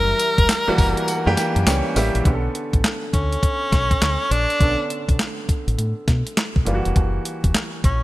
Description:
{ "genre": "R&B, new jack swing", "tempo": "102 BPM", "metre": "4/4", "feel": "swing 64% on 16ths", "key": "B minor", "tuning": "A4 = 440 Hz", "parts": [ { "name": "bright tenor saxophone", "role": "melody", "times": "0.0-8.0 s", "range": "C#4 to A#4", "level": "-22 LUFS", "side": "equal", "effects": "none" }, { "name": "warm baby grand piano", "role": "accompaniment", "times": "0.0-8.0 s", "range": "D3 to A#5", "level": "-25 LUFS", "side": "right 1 dB", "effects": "none" }, { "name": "brassy analog pad", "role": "sustained chords", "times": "0.0-2.2 s", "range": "G3 to A#5", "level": "-34 LUFS", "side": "left 1 dB", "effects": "none" }, { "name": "deep dub fingered electric bass", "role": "bass", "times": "0.0-8.0 s", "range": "E1 to B2", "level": "-22 LUFS", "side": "equal", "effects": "none" }, { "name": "crisp 8-bit digital drum machine", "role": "drums", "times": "0.2-8.0 s", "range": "handclaps, hi-hat, kick drum, snare drum, tambourine", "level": "-20 LUFS", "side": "equal", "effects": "none" } ], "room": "light reverb, digital ambience", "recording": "bright 1980s-style digital production", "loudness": "-18 LUFS", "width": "side -17 dB against mid", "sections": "0.0-2.3 A section; 2.3-8.0 B section", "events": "grand piano fill 0.5-2.3; kick muted 1.1-2.3", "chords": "0.0 F#7b9; 2.3 Bm9; 6.7 F#7b9", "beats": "0.49 1.08 1.67 | 2.25 2.84 3.43 4.02 | 4.61 5.20 5.78 6.37 | 6.96 7.55" }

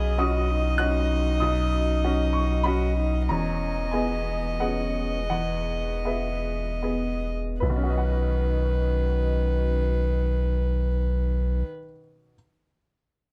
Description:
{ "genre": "neoclassical piano and strings", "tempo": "74-99 BPM", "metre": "3/4", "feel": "rubato", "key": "B major", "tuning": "A4 = 440 Hz", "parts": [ { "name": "warm violin", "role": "melody", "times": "0.0-11.6 s", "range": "B4 to D#5", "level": "-33 LUFS", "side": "equal", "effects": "none" }, { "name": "warm cello", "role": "second line", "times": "0.0-11.6 s", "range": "D#3 to G#4", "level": "-37 LUFS", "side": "equal", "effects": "none" }, { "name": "bright upright piano", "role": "accompaniment", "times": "0.0-12.4 s", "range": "B1 to F#6", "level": "-32 LUFS", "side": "equal", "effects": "none" }, { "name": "dark analog pad", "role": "sustained chords", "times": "0.0-11.6 s", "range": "B3 to D#5", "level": "-40 LUFS", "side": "equal", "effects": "none" }, { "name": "punchy sub bass", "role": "bass", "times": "0.0-11.6 s", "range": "E1 to B1", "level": "-28 LUFS", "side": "equal", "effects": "none" } ], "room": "little or no reverb", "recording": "close, detailed microphones", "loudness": "-25 LUFS", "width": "mono", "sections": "0.0-7.6 A section; 7.6-12.3 B section", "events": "slowing down 2.3-7.6", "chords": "0.0 Badd9; 3.3 Emaj7; 7.6 Badd9", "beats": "0.18 0.80 | 1.41 2.03 2.65 | 3.28 3.92 4.59 | 5.29 6.04 6.81 | 7.61 8.40 9.19 | 9.97 10.76 11.54" }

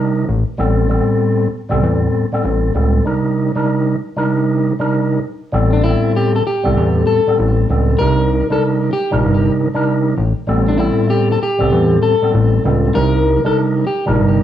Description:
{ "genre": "hip hop, boom-bap hip-hop", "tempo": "97 BPM", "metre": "4/4", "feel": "swing 63% on 16ths", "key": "A minor", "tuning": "A4 = 445 Hz", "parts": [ { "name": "percussive tonewheel organ", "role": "accompaniment", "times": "0.0-14.4 s", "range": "A2 to Bb4", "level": "-15 LUFS", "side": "right 1 dB", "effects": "fast rotary speaker, cassette tape, plate reverb" }, { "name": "fat analog bass", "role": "bass", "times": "0.3-14.4 s", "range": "G1 to E2", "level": "-15 LUFS", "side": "equal", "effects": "none" }, { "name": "electric guitar at the edge of break-up", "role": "melody", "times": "5.7-14.0 s", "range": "D4 to Bb4", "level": "-18 LUFS", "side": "left 3 dB", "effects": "cassette tape, plate reverb, tape echo" } ], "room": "moderate studio reverb, RT60 0.5 s", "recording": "home recording on cassette, studio reverb", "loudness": "-13 LUFS", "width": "side -11 dB against mid", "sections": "0.0-5.5 A section; 5.5-14.4 B section", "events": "none", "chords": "0.0 Cm9; 0.6 Am9; 3.1 Cm9; 5.5 Am9; 8.0 Cm9; 10.5 Am9; 13.0 Cm9", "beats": "| 0.58 1.20 1.82 2.44 | 3.06 3.67 4.29 4.91 | 5.53 6.15 6.77 7.38 | 8.00 8.62 9.24 9.86 | 10.48 11.10 11.71 12.33 | 12.95 13.57 14.19" }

